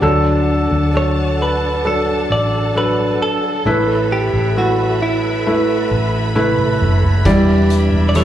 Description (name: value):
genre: pop ballad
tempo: 66 BPM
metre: 4/4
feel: straight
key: D major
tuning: A4 = 440 Hz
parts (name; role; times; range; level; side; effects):
- felt-muted upright piano; accompaniment; 0.0-8.2 s; A2 to D5; -17 LUFS; equal; slapback echo
- warm studio string section; sustained chords; 0.0-8.2 s; G3 to B5; -24 LUFS; right 1 dB; none
- hollow-body short-scale fingered electric bass; bass; 0.0-8.2 s; E1 to D2; -18 LUFS; equal; none
- direct-recorded clean electric guitar; melody; 1.0-8.2 s; E4 to D5; -20 LUFS; right 2 dB; slapback echo
- soft-mallet drum kit; drums; 6.4-8.2 s; hi-hat, kick drum, rim click, toms; -21 LUFS; right 1 dB; none
- picked steel-string acoustic guitar; arpeggios; 7.2-8.2 s; E2 to G4; -18 LUFS; right 2 dB; slapback echo, digital delay
room: light reverb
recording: live gig heard through the venue's PA, club reverb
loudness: -13 LUFS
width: side -11 dB against mid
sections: 0.0-8.2 A section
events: drum fill 6.4-7.3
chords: 0.0 D; 3.7 Asus2; 7.3 Em7